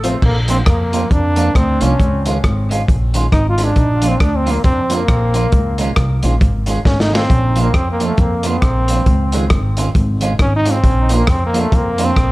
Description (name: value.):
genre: ska.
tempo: 136 BPM.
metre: 4/4.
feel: swing 58% on 8ths.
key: Bb major.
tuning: A4 = 440 Hz.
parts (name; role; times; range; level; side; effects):
clean electric guitar; accompaniment; 0.0-12.2 s; Eb3 to F4; -22 LUFS; right 3 dB; phaser, dub echo.
upright bass; bass; 0.0-12.3 s; Ab1 to F2; -17 LUFS; equal; none.
crunchy breakbeat drum kit; drums; 0.0-12.3 s; crash cymbal, hi-hat, kick drum, rim click, snare drum; -16 LUFS; equal; none.
brilliant trombone; melody; 0.3-12.3 s; A3 to F4; -19 LUFS; equal; dub echo.
room: little or no reverb.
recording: dark, warm production.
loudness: -12 LUFS.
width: side -19 dB against mid.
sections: 0.2-12.3 A section.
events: trombone solo 0.2-12.3; drum fill 6.9-7.3.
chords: 0.2 Bb; 2.0 Dbadd9; 3.8 Bb; 5.5 Dbadd9; 7.3 Bb; 9.1 Dbadd9; 10.8 Bb.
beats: | 0.23 0.67 1.11 1.55 | 2.00 2.44 2.88 3.32 | 3.77 4.21 4.65 5.09 | 5.53 5.97 6.42 6.86 | 7.30 7.74 8.18 8.63 | 9.07 9.51 9.95 10.39 | 10.84 11.28 11.72 12.16.